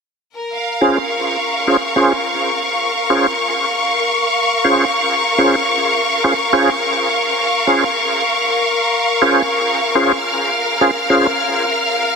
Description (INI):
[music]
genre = glitch hop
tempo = 105 BPM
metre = 4/4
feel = swing 59% on 16ths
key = Bb minor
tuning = A4 = 440 Hz
[part]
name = bright studio string section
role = texture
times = 0.4-12.2 s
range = Bb4 to F6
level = -16 LUFS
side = left 1 dB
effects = none
[part]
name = tonewheel organ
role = stabs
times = 0.8-11.3 s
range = Db4 to C5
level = -17 LUFS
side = right 1 dB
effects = overdrive, chorus vibrato, slow rotary speaker, low-pass filter, digital delay
[sound]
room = wet lush hall reverb, RT60 3.0 s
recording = dense, heavily limited modern master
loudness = -13 LUFS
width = side -5 dB against mid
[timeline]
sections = 0.4-12.2 A section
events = filter sweep on tonewheel organ 0.4-12.2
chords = 0.4 Bbm9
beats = | 0.36 0.93 1.50 2.07 | 2.65 3.22 3.79 4.36 | 4.93 5.50 6.07 6.64 | 7.22 7.79 8.36 8.93 | 9.50 10.07 10.64 11.22 | 11.79